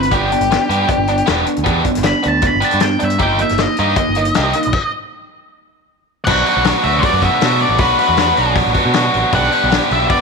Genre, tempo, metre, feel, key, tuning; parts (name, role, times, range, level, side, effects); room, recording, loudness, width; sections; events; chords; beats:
indie rock; 156 BPM; 4/4; straight; A4 = 440 Hz
octave-fuzz lead guitar; melody; 0.0-10.2 s; G4 to B5; -18 LUFS; left 2 dB; distortion, slapback echo
biting overdriven guitar; riff; 0.0-10.2 s; E3 to G4; -16 LUFS; right 1 dB
overdriven picked electric bass; bass; 0.0-10.1 s; E1 to B2; -20 LUFS; right 2 dB
loose indie drum kit; drums; 0.0-10.2 s; crash cymbal, hi-hat, kick drum, snare drum; -20 LUFS; left 4 dB
light reverb, studio reverb; 1960s-style stereo; -12 LUFS; side -4 dB against mid
0.0-6.3 A section; 6.3-10.2 B section
lead electric guitar solo 0.0-6.3; stop 4.7-6.3
0.1 G; 3.2 Eb/G; 6.3 Bm; 9.3 Gmaj7
| 0.12 0.51 0.90 1.28 | 1.67 2.05 2.44 2.82 | 3.21 3.59 3.98 4.36 | 4.74 5.13 5.51 5.89 | 6.28 6.66 7.04 7.42 | 7.80 8.19 8.57 8.95 | 9.34 9.72 10.10